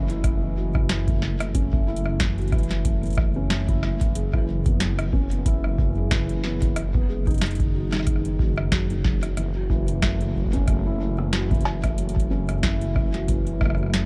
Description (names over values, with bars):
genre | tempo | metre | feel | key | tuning
IDM | 92 BPM | 4/4 | swing 56% on 16ths | F# dorian | A4 = 440 Hz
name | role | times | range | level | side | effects
felt-muted upright piano | arpeggios | 0.0-14.1 s | D#3 to G#4 | -31 LUFS | equal | dub echo
dark detuned saw bass | bass | 0.0-14.1 s | F#1 | -28 LUFS | equal | tube saturation
booming analog drum machine | drums | 0.1-14.1 s | cowbell, hi-hat, rim click, snare drum | -31 LUFS | equal | delay
electronic kick drum | drums | 0.2-13.8 s | none | -26 LUFS | equal | none
room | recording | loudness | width
little or no reverb | worn, warbling old tape, cassette tape, warbly pitch drift | -23 LUFS | mono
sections
0.0-14.1 A section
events
none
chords
0.0 F#m7; 4.2 C#m7/F#; 6.8 G#m7/F#; 9.4 F#m7